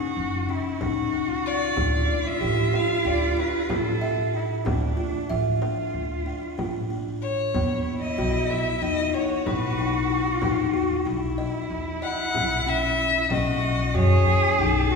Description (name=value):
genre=contemporary instrumental, chamber music in an uneven meter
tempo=187 BPM (eighths)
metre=9/8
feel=straight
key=unclear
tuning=A4 = 436 Hz
part: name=rich cello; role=second line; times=0.0-15.0 s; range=D4 to G#4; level=-28 LUFS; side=right 2 dB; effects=none
part: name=buzzing kalimba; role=arpeggios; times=0.0-15.0 s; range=C#3 to E5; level=-28 LUFS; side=left 2 dB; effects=none
part: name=upright bass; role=bass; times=0.2-14.9 s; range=F#1 to F#2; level=-27 LUFS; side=equal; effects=none
part: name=frame drum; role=percussion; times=0.2-14.7 s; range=none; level=-34 LUFS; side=left 2 dB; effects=none
part: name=rich violin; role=melody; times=1.5-15.0 s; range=A4 to F#5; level=-26 LUFS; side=left 3 dB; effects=none
room=wet concert hall reverb, RT60 1.9 s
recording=recorded in a church or concert hall, small room ambience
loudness=-22 LUFS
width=side -4 dB against mid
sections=0.0-15.0 A section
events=none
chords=0.0 F#5; 1.8 Dm; 7.5 Badd9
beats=0.17 0.49 0.81 1.13 1.45 | 1.77 2.09 2.41 2.73 3.05 3.38 3.70 4.02 4.34 | 4.66 4.98 5.30 5.62 5.94 6.26 6.58 6.90 7.22 | 7.54 7.86 8.18 8.50 8.82 9.14 9.46 9.78 10.10 | 10.42 10.74 11.06 11.38 11.71 12.03 12.35 12.67 12.99 | 13.31 13.63 13.95 14.27 14.59 14.91